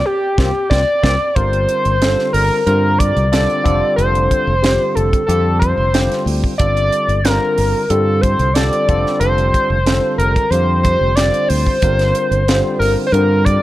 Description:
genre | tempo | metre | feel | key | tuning
electric jazz fusion | 92 BPM | 4/4 | straight | G minor | A4 = 440 Hz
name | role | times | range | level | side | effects
overdriven synth lead | melody | 0.0-13.6 s | G4 to D5 | -16 LUFS | equal | slapback echo
barky tine electric piano | accompaniment | 0.4-13.6 s | D3 to C5 | -22 LUFS | left 1 dB | analog chorus
fingered electric bass | bass | 0.4-13.6 s | F1 to G2 | -17 LUFS | equal | none
tight funk drum kit | drums | 0.4-13.6 s | hi-hat, kick drum, snare drum | -19 LUFS | equal | none
room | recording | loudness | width
light reverb, small room ambience | none | -13 LUFS | side -15 dB against mid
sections
0.0-1.4 A section; 1.4-13.6 B section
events
band accent 0.0-1.4; drum fill 1.0-1.4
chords
0.0 C9sus4; 1.4 Gm11; 3.7 Fadd9; 6.6 Gm11; 8.9 Fadd9; 11.8 Gm7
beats
0.05 0.71 | 1.36 2.02 2.67 3.33 | 3.98 4.63 5.29 5.94 | 6.60 7.25 7.90 8.56 | 9.21 9.87 10.52 11.17 | 11.83 12.48 13.13

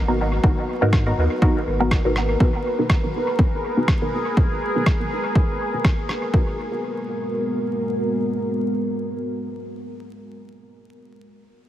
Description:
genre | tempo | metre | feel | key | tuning
dub techno | 122 BPM | 4/4 | swing 56% on 16ths | G# minor | A4 = 439 Hz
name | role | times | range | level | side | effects
deep dark ambient pad | sustained chords | 0.2-9.7 s | G#3 to B4 | -25 LUFS | equal | chorus, built-in reverb, sidechain pumping
warm sub bass | bass | 0.0-2.4 s | G#1 to G#2 | -23 LUFS | equal | sidechain pumping
filtered dub chord stab | stabs | 0.1-9.7 s | B3 to A#4 | -24 LUFS | equal | phaser, sidechain pumping, dub echo
electronic kick drum | drums | 0.4-6.4 s | none | -19 LUFS | equal | none
electronic rim click | drums | 0.9-6.2 s | none | -30 LUFS | equal | dub echo
room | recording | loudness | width
light reverb | heavily compressed radio sound, vinyl crackle | -19 LUFS | side -12 dB against mid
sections
0.0-6.3 A section; 6.3-10.3 B section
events
filter sweep on synth stab 0.0-6.3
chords
0.0 G#m9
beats
| 0.44 0.93 1.42 1.91 | 2.40 2.90 3.39 3.88 | 4.37 4.86 5.36 5.85 | 6.34 6.83 7.32 7.81 | 8.30 8.80 9.29

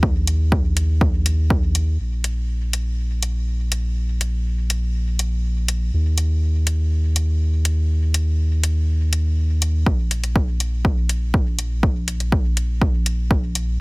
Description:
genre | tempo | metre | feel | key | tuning
dub techno | 122 BPM | 4/4 | straight | unclear | A4 = 440 Hz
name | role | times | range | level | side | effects
soft dub sub bass | bass | 0.0-13.8 s | Bb1 to Eb2 | -20 LUFS | equal | sidechain pumping
electronic kick drum | drums | 0.0-1.6, 9.9-13.4 s | none | -19 LUFS | equal | overdrive, small room ambience
electronic hi-hat | drums | 0.3-13.7 s | none | -27 LUFS | left 2 dB | overdrive, small room ambience
room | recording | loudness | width
little or no reverb | heavily compressed radio sound, multiband compression | -18 LUFS | side -28 dB against mid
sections
0.0-2.0 A section; 2.0-9.9 B section; 9.9-13.8 A section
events
none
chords
none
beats
| 0.03 0.52 1.01 1.50 | 2.00 2.49 2.98 3.47 | 3.96 4.46 4.95 5.44 | 5.93 6.42 6.91 7.41 | 7.90 8.39 8.88 9.37 | 9.87 10.36 10.85 11.34 | 11.83 12.32 12.82 13.31

